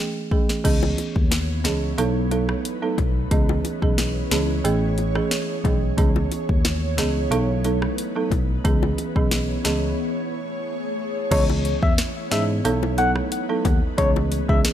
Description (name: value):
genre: dancehall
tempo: 90 BPM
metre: 4/4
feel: straight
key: C# minor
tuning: A4 = 440 Hz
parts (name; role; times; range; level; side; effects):
- folk marimba with medium mallets; accompaniment; 0.3-14.7 s; E3 to A4; -25 LUFS; right 4 dB; none
- afro-pop drum kit; drums; 0.3-14.7 s; crash cymbal, hi-hat, kick drum, rim click, snare drum; -23 LUFS; left 1 dB; none
- ethereal airy pad; sustained chords; 1.1-14.7 s; A3 to C#5; -30 LUFS; left 1 dB; ensemble chorus, built-in reverb, sidechain pumping
- tine electric piano; bass; 0.6-14.6 s; A1 to G#2; -25 LUFS; left 1 dB; none
- bongos; percussion; 0.8-14.3 s; none; -32 LUFS; left 11 dB; none
- soft struck synth lead; melody; 11.3-14.6 s; C#5 to F#5; -25 LUFS; left 2 dB; chorus, ping-pong delay
room: digital ambience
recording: none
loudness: -19 LUFS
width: side -11 dB against mid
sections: 0.6-11.3 A section; 11.3-14.7 B section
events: break 10.0-11.3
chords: 0.0 Amaj7; 0.6 C#m7; 2.0 B7; 3.3 C#m7; 4.6 Amaj7; 6.0 C#m7; 7.3 B7; 8.6 C#m7; 10.0 Amaj7; 11.3 C#m7; 12.6 B7; 14.0 C#m7